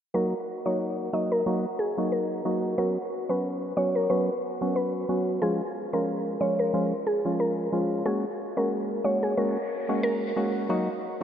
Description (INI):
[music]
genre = dancehall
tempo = 91 BPM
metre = 4/4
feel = swing 56% on 16ths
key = Eb minor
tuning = A4 = 440 Hz
[part]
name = mallet-like synth pluck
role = melody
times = 0.1-10.5 s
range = Ab4 to Eb5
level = -28 LUFS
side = equal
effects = chorus, diffuse ambient delay
[part]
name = percussive organ stab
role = accompaniment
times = 0.1-11.2 s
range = F3 to Gb4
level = -27 LUFS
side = equal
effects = chorus
[sound]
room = wet huge ambient reverb, RT60 4.3 s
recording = dreamy mix soaked in reverb, low-pass filter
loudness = -25 LUFS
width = side -9 dB against mid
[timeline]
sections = 0.1-10.7 A section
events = filter sweep 0.1-10.7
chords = 0.1 Ebm; 2.8 Bsus2; 5.4 Db; 8.1 Gbadd9; 10.7 Ebm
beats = | 0.14 0.80 1.46 2.12 | 2.78 3.44 4.10 4.76 | 5.42 6.08 6.74 7.40 | 8.06 8.72 9.38 10.04 | 10.70